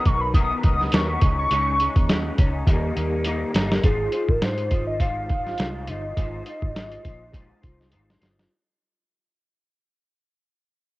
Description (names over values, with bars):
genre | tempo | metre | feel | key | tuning
indie pop, bedroom pop | 103 BPM | 4/4 | swing 55% on 16ths | Ab major | A4 = 442 Hz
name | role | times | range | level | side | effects
warm velvety synth lead | melody | 0.0-7.9 s | Ab4 to D#6 | -26 LUFS | equal | analog chorus, cassette tape
electric guitar through a small old amp | accompaniment | 0.0-8.5 s | B2 to C5 | -29 LUFS | left 2 dB | ensemble chorus, vibrato effect, cassette tape
vintage muted fingered electric bass | bass | 0.1-8.4 s | G1 to Ab2 | -28 LUFS | equal | none
lo-fi sampler-style drum kit | drums | 0.1-8.5 s | hi-hat, kick drum, snare drum | -21 LUFS | equal | cassette tape
room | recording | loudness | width
light reverb | home recording on cassette, nothing above 10.8 kHz | -20 LUFS | side -19 dB against mid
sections
0.0-3.8 A section; 3.8-8.5 B section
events
drum fill 2.7-3.8, 7.9-8.5; fade-out 3.8-8.5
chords
0.0 Bmaj7; 1.2 Dbsus2; 2.7 Eb; 3.8 Ab6